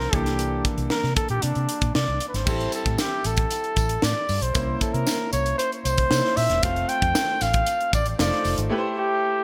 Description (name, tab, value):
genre	polished 1980s jazz-funk pop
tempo	115 BPM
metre	4/4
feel	straight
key	unclear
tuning	A4 = 441 Hz
part	warm flugelhorn	melody	0.0-9.4 s	D4 to G5	-27 LUFS	equal	none
part	warm concert grand piano	accompaniment	0.0-9.4 s	E3 to C5	-32 LUFS	equal	subtle chorus
part	vintage muted fingered electric bass	bass	0.0-8.7 s	E1 to C3	-29 LUFS	equal	none
part	crisp fusion drum kit	drums	0.0-8.7 s	crash cymbal, hi-hat, kick drum, snare drum	-28 LUFS	equal	gated reverb
part	tambourine	percussion	2.5-8.6 s	none	-38 LUFS	equal	none
room	light reverb, small room ambience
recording	bright 1980s-style digital production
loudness	-23 LUFS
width	mono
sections	0.0-2.5 A section; 2.5-9.4 B section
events	none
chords	0.1 C13; 2.5 Am7; 4.6 C7b9; 6.6 F; 8.2 F7; 8.7 Am7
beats	| 0.39 0.91 1.43 1.95 | 2.47 2.99 3.51 4.03 | 4.55 5.07 5.59 6.11 | 6.63 7.15 7.67 8.19 | 8.71 9.23